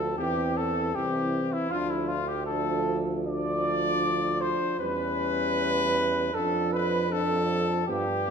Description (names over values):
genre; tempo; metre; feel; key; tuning
classical, brass quintet; 78 BPM; 4/4; rubato; unclear; A4 = 441 Hz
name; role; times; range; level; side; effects
warm trumpet; melody; 0.0-8.3 s; E4 to D5; -30 LUFS; left 5 dB; none
warm flugelhorn; second line; 0.0-8.3 s; E4 to D5; -31 LUFS; right 6 dB; none
mellow French horn; accompaniment; 0.0-8.3 s; B3 to D4; -33 LUFS; left 3 dB; none
mellow euphonium; accompaniment; 0.0-8.3 s; E3 to G3; -33 LUFS; right 3 dB; none
clear bass trombone; bass; 0.0-8.3 s; C2 to G2; -32 LUFS; right 2 dB; none
room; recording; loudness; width
wet recital hall reverb, RT60 1.4 s; recorded in a church or concert hall; -25 LUFS; side -6 dB against mid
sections
0.0-8.3 A section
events
none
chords
0.2 C/E; 1.7 Dm; 4.8 C#dim/E; 6.3 Dm/F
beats
0.18 0.95 | 1.71 2.47 3.27 4.04 | 4.80 5.58 6.34 7.12 | 7.88